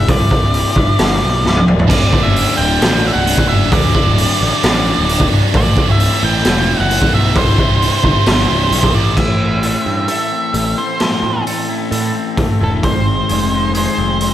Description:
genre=quiet-loud alternative rock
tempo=132 BPM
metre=4/4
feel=straight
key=C lydian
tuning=A4 = 444 Hz
part: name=octave-fuzz lead guitar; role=melody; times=0.0-14.3 s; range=A4 to G5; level=-19 LUFS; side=right 2 dB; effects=distortion, slapback echo
part: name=raw garage guitar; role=riff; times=0.0-14.3 s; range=C2 to A4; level=-21 LUFS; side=left 10 dB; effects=overdrive, slapback echo
part: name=fuzz picked electric bass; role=bass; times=0.0-14.3 s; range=C1 to A2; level=-18 LUFS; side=equal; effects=overdrive
part: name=raw garage drum kit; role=drums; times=0.1-14.3 s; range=crash cymbal, hi-hat, kick drum, snare drum, toms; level=-15 LUFS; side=equal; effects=none
part: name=scooped high-gain guitar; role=riff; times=1.9-9.7 s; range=C2 to A4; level=-20 LUFS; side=right 11 dB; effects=distortion, slapback echo
part: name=twangy electric guitar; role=arpeggios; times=9.2-14.3 s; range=Ab2 to A4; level=-23 LUFS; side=right 4 dB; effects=slapback echo
room=light reverb, studio reverb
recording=none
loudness=-11 LUFS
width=side -12 dB against mid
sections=0.0-9.2 A section; 9.2-14.3 B section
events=drum fill 1.5-1.9; half time 9.2-14.3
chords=0.0 C; 1.9 D; 5.5 Am; 7.4 C; 9.2 Am; 12.8 Ab6

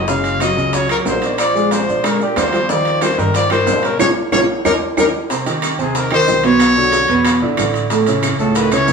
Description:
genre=Afro-Cuban jazz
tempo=184 BPM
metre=4/4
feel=straight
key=unclear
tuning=A4 = 439 Hz
part: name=clear trumpet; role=melody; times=0.0-8.9 s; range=G4 to F5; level=-17 LUFS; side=left 2 dB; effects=none
part: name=breathy tenor saxophone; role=second line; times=0.0-8.9 s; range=Bb2 to Ab3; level=-22 LUFS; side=left 2 dB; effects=none
part: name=clear baby grand piano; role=accompaniment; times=0.0-8.9 s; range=A2 to D5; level=-18 LUFS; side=right 2 dB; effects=none
part: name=upright bass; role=bass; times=0.0-8.9 s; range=Gb1 to Bb2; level=-26 LUFS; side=equal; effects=none
part: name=bongos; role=percussion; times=0.1-8.9 s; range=none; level=-25 LUFS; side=left 4 dB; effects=none
part: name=maracas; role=percussion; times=0.1-8.9 s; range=none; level=-30 LUFS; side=right 3 dB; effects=none
part: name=timbales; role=percussion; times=0.2-8.9 s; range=none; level=-22 LUFS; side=right 3 dB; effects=none
part: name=claves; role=percussion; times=0.4-8.9 s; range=none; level=-28 LUFS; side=right 2 dB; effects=none
room=wet large studio reverb, RT60 1.0 s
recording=band playing live in one room, small room ambience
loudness=-13 LUFS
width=side -5 dB against mid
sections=0.0-5.3 A section; 5.3-8.9 B section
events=band accent 4.0-5.3; drum fill 4.3-5.3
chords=0.1 Gb69; 1.4 Bb9; 2.7 Ebmaj9; 4.0 Bbm; 4.6 Eb7; 5.3 Cmmaj7; 6.6 Bmadd9; 7.3 E5; 7.9 A

